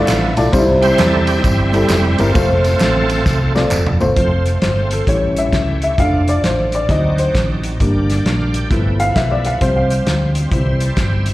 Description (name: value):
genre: uptempo gospel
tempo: 132 BPM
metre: 4/4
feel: swing 65% on 8ths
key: F major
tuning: A4 = 442 Hz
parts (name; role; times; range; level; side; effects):
- dark upright piano; accompaniment; 0.0-10.9 s; G2 to A5; -17 LUFS; left 1 dB; slapback echo
- bright tonewheel organ; sustained chords; 0.0-11.3 s; F3 to A5; -21 LUFS; right 2 dB; slow rotary speaker, overdrive, chorus vibrato
- hollow-body short-scale fingered electric bass; bass; 0.1-11.3 s; F1 to E2; -18 LUFS; equal; none
- warm soul drum kit; drums; 0.1-11.3 s; hi-hat, kick drum, ride cymbal, snare drum, toms; -20 LUFS; equal; none
- handclaps and tambourine; percussion; 0.1-4.1 s; none; -28 LUFS; right 1 dB; slapback echo
room: moderate club reverb, RT60 0.8 s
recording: live gig heard through the venue's PA, recital hall reverb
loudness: -13 LUFS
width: side -16 dB against mid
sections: 0.0-4.2 A section; 4.2-11.3 B section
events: upright piano fill 0.0-0.5; tonewheel organ solo 0.0-4.2; drum fill 3.3-4.2; upright piano solo 4.2-11.3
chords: 0.0 G13; 0.5 C; 2.3 F; 5.1 A7; 6.0 Dm/F; 6.9 D7b9; 7.8 Gm; 8.7 G13; 9.6 Csus4; 10.5 C